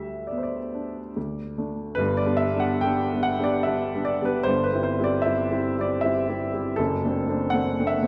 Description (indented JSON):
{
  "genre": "classical, romantic nocturne for solo piano",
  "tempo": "66-81 BPM",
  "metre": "3/4",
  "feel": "rubato",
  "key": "G major",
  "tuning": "A4 = 440 Hz",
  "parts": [
    { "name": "warm upright piano", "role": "solo", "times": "0.0-8.1 s", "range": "F#1 to G5", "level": "-25 LUFS", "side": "equal", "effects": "none" }
  ],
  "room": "wet recital hall reverb, RT60 1.5 s",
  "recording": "dark, warm production",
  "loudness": "-25 LUFS",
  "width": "mono",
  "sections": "0.0-2.0 A section; 2.0-8.1 B section",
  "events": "none",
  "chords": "0.0 G/D; 1.2 D5; 2.0 G; 4.5 C/G; 6.8 D7/F#"
}